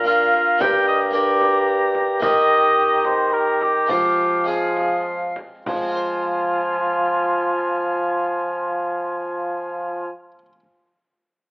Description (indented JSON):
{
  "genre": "classical, renaissance-style consort dance",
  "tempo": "98-112 BPM",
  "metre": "3/4",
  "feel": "straight",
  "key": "F dorian",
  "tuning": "A4 = 441 Hz",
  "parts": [
    { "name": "clear oboe", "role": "melody", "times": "0.0-10.1 s", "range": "F5 to Bb5", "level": "-29 LUFS", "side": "equal", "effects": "none" },
    { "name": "mellow cor anglais", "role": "second line", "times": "0.0-10.1 s", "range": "F4 to G5", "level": "-21 LUFS", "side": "equal", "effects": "none" },
    { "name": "clear bassoon", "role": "accompaniment", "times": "0.0-10.1 s", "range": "F4 to G4", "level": "-25 LUFS", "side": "equal", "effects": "none" },
    { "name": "harpsichord", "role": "accompaniment", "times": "0.0-10.6 s", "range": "G2 to C5", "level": "-28 LUFS", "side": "equal", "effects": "none" },
    { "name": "warm bassoon", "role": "bass", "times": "0.0-10.1 s", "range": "G2 to F3", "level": "-23 LUFS", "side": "equal", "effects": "none" },
    { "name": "frame drum", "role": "percussion", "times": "0.3-5.9 s", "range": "none", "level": "-31 LUFS", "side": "equal", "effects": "none" }
  ],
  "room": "moderate large studio reverb, RT60 1.4 s",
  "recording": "telephone sound",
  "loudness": "-17 LUFS",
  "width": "side -37 dB against mid",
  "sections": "0.0-5.7 A section; 5.7-9.3 B section",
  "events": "slowing down 1.4-5.7",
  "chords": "0.0 Bb; 0.6 Gm; 2.2 Eb; 3.9 Fm"
}